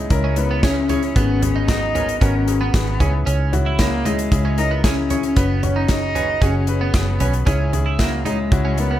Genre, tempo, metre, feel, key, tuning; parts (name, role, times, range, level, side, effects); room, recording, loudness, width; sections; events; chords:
piano-driven pop; 114 BPM; 4/4; straight; A4 = 441 Hz
warm cello; melody; 0.0-9.0 s; G#3 to D#4; -23 LUFS; left 2 dB
warm upright piano; accompaniment; 0.0-9.0 s; G#2 to C#5; -25 LUFS; left 5 dB
vintage muted fingered electric bass; bass; 0.0-9.0 s; F#1 to C#2; -21 LUFS; equal
modern studio drum kit; drums; 0.1-8.9 s; hi-hat, kick drum, snare drum, toms; -21 LUFS; right 1 dB
twelve-string electric guitar; riff; 0.2-9.0 s; B3 to E4; -28 LUFS; right 6 dB; lush chorus
light reverb; -16 LUFS; side -12 dB against mid
0.0-9.0 A section
0.0 C#m; 1.2 G#m7; 3.0 C#m; 5.4 F#sus4; 7.5 C#m